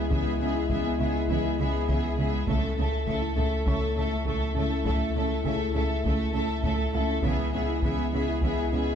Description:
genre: cinematic, hybrid orchestral and electronic film score.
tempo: 101 BPM.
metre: 4/4.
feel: straight.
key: unclear.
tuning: A4 = 441 Hz.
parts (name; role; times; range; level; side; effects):
warm symphonic violin section; melody; 0.0-8.9 s; E5; -37 LUFS; left 3 dB; none.
clear symphonic violin section; second line; 0.0-8.9 s; G#4 to A4; -34 LUFS; left 2 dB; none.
rich chamber viola section; accompaniment; 0.0-8.9 s; A3 to B3; -33 LUFS; right 4 dB; none.
dark French horn section; sustained chords; 0.0-8.9 s; G#3 to E4; -34 LUFS; left 7 dB; none.
thumb-piano-like synth pluck; arpeggios; 0.0-8.8 s; E3 to A4; -35 LUFS; right 2 dB; chorus, digital delay.
pure sine sub bass; bass; 0.0-8.9 s; C#2; -31 LUFS; left 1 dB; none.
felt-muted upright piano; texture; 0.0-8.9 s; E4 to G#6; -42 LUFS; left 3 dB; none.
rich symphonic cello section; bass; 0.1-8.8 s; C#3; -35 LUFS; right 2 dB; none.
warm symphonic double bass section; bass; 0.1-8.8 s; C#2; -34 LUFS; right 2 dB; none.
taiko ensemble; drums; 0.1-8.9 s; none; -33 LUFS; equal; none.
room: moderate scoring stage reverb, RT60 1.7 s.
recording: dark, warm production.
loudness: -24 LUFS.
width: side -8 dB against mid.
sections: 0.0-8.9 A section.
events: none.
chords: 0.0 E/C#; 2.5 A/C#; 7.2 E/C#.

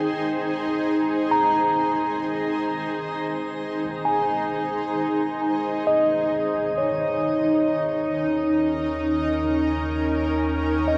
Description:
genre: ambient.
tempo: 66 BPM.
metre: 4/4.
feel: straight.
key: Eb mixolydian.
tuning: A4 = 440 Hz.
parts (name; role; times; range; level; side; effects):
granular cloud pad; sustained chords; 0.0-11.0 s; Db4 to G5; -26 LUFS; equal; built-in reverb, shimmer reverb.
mellow tine electric piano; arpeggios; 0.0-11.0 s; Db5 to Bb5; -28 LUFS; equal; tape echo, shimmer reverb.
deep rumbling drone; bass; 8.3-11.0 s; Eb2; -33 LUFS; equal; built-in reverb.
room: wet lush hall reverb, RT60 2.6 s.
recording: none.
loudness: -23 LUFS.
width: mono.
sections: 0.0-6.3 A section; 6.3-11.0 B section.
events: none.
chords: 0.0 Ab/Eb; 6.3 Eb7.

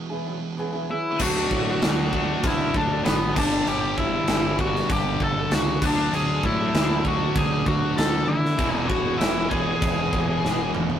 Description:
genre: quiet-loud alternative rock.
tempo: 98 BPM.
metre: 4/4.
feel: straight.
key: unclear.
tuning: A4 = 443 Hz.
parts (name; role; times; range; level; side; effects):
thick fuzz guitar; riff; 0.0-11.0 s; G2 to E4; -29 LUFS; right 3 dB; distortion.
fingerpicked steel-string acoustic guitar; arpeggios; 0.1-1.2 s; E3 to G#4; -31 LUFS; right 1 dB; none.
octave-fuzz lead guitar; melody; 0.9-10.7 s; B3 to A5; -26 LUFS; left 2 dB; distortion.
cranked stack guitar; riff; 1.2-11.0 s; E2 to D4; -31 LUFS; left 4 dB; overdrive.
tight distorted guitar; riff; 1.2-11.0 s; E2 to D4; -33 LUFS; right 1 dB; distortion.
growling picked electric bass; bass; 1.2-11.0 s; E1 to D3; -29 LUFS; equal; overdrive.
big rock drum kit; drums; 1.2-11.0 s; crash cymbal, kick drum, snare drum, toms; -25 LUFS; equal; none.
room: light reverb.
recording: rough rehearsal-room recording, tube saturation, faint mains hum.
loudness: -20 LUFS.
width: side -9 dB against mid.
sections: 0.0-1.2 A section; 1.2-11.0 B section.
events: break 0.0-1.2; drum fill 10.4-11.0.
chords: 0.0 Eadd9; 1.2 D; 3.4 Gadd9; 5.8 D; 8.6 E.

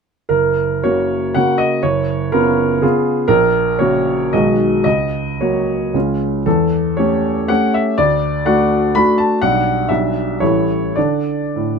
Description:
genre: classical, romantic triple-time dance for piano with dotted rhythms.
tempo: 95-133 BPM.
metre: 3/4.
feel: rubato.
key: F# major, D major from 6.5 s.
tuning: A4 = 440 Hz.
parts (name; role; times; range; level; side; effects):
clear baby grand piano; solo; 0.3-11.8 s; F#1 to B5; -14 LUFS; equal; none.
room: moderate studio reverb, RT60 0.6 s.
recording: none.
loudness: -14 LUFS.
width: side -5 dB against mid.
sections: 0.3-11.8 A section.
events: none.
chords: 0.3 F#; 1.8 C#7/F#; 3.3 F#/A#; 4.3 G#m7/B; 4.9 F#/C#; 5.9 C#; 6.5 A7/E; 8.0 D; 9.4 G/B; 10.4 A7; 11.0 D5.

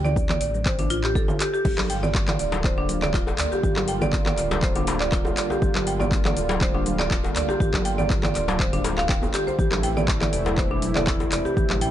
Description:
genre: afro house.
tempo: 121 BPM.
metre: 4/4.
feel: swing 53% on 16ths.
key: G dorian.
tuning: A4 = 440 Hz.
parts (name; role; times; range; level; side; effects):
buzzing marimba with hard mallets; arpeggios; 0.0-11.9 s; D4 to G5; -26 LUFS; right 1 dB; sidechain pumping, dub echo.
dark detuned saw bass; bass; 0.0-11.9 s; D1 to D2; -29 LUFS; equal; sidechain pumping.
afro-pop drum kit; drums; 0.0-11.9 s; crash cymbal, handclaps, hi-hat, shaker, toms; -29 LUFS; left 1 dB; none.
congas; percussion; 0.1-11.8 s; none; -31 LUFS; right 3 dB; none.
electronic kick drum; drums; 0.2-11.7 s; none; -25 LUFS; equal; none.
warm analog pad; sustained chords; 1.7-11.9 s; C3 to F4; -30 LUFS; right 1 dB; chorus, tremolo, sidechain pumping.
djembe; percussion; 1.8-11.8 s; none; -31 LUFS; left 3 dB; none.
room: little or no reverb.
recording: nothing above 10.5 kHz.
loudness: -20 LUFS.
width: side -11 dB against mid.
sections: 0.0-11.9 A section.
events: none.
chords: 0.0 D5; 1.7 Gm7; 9.6 Am.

